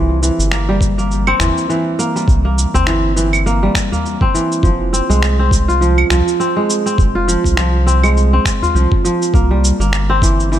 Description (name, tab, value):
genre	organic downtempo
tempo	102 BPM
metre	4/4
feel	swing 57% on 16ths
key	F harmonic minor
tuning	A4 = 440 Hz
part	kora	arpeggios	0.0-10.6 s	E3 to F4	-16 LUFS	equal	digital delay
part	round analog bass	bass	0.0-10.6 s	F1 to C2	-15 LUFS	equal	sidechain pumping
part	electronic shaker, finger snaps and claves	drums	0.2-10.6 s	none	-21 LUFS	right 2 dB	none
part	electronic kick drum	drums	0.8-10.4 s	none	-15 LUFS	equal	none
part	udu	percussion	1.4-8.7 s	none	-22 LUFS	left 1 dB	none
room	light reverb, digital ambience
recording	none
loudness	-12 LUFS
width	side -11 dB against mid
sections	0.0-10.6 A section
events	none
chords	0.0 C7; 4.6 Fm; 9.3 C7